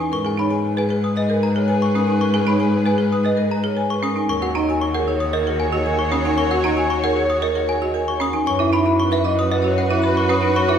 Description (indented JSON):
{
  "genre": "classical, minimalist pattern music",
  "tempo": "115 BPM",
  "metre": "4/4",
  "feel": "straight",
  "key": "G# minor",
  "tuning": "A4 = 440 Hz",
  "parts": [
    { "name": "vibraphone with medium mallets", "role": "melody", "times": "0.0-10.7 s", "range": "G#4 to B5", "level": "-24 LUFS", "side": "left 5 dB", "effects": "none" },
    { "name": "folk marimba with hard mallets", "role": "arpeggios", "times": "0.0-10.8 s", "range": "C#4 to B4", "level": "-22 LUFS", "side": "right 3 dB", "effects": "none" },
    { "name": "trough xylophone with wooden mallets", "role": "arpeggios", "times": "0.0-10.8 s", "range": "D#5 to D#6", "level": "-27 LUFS", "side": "left 2 dB", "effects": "none" },
    { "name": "wooden-headed alto flute", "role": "second line", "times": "0.1-10.8 s", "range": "B4 to C#5", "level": "-28 LUFS", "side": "right 2 dB", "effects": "none" },
    { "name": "rich symphonic violin section", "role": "sustained chords", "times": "0.1-10.8 s", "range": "F#4 to C#5", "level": "-29 LUFS", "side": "left 3 dB", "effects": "none" },
    { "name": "rich cello", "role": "bass", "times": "0.1-10.8 s", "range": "D#2 to G#2", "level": "-22 LUFS", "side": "equal", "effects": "none" }
  ],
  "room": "wet recital hall reverb, RT60 1.5 s",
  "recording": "recorded in a church or concert hall",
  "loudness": "-17 LUFS",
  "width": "side -8 dB against mid",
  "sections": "0.0-10.8 A section",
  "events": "none",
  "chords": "0.1 G#madd9; 4.3 D#m7; 8.5 F#7sus4",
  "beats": "| 0.12 0.64 1.16 1.68 | 2.21 2.73 3.25 3.77 | 4.29 4.82 5.34 5.86 | 6.38 6.90 7.42 7.95 | 8.47 8.99 9.51 10.03 | 10.55"
}